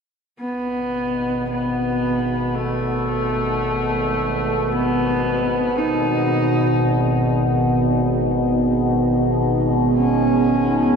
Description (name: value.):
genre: dark ambient drone.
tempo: 56 BPM.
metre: 4/4.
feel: straight.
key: G# phrygian.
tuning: A4 = 441 Hz.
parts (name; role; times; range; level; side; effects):
rich horsehead fiddle; melody; 0.4-11.0 s; A3 to D#4; -22 LUFS; equal; tape echo.
dark analog pad; sustained chords; 1.5-11.0 s; B3 to D#5; -23 LUFS; right 2 dB; chorus.
overtone-sweeping drone; drone; 0.9-11.0 s; G#1 to B2; -21 LUFS; left 1 dB; chorus, built-in reverb.
room: wet cathedral reverb, RT60 7.0 s.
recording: dark, warm production.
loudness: -17 LUFS.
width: side -6 dB against mid.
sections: 0.4-11.0 A section.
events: none.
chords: 0.4 G#m.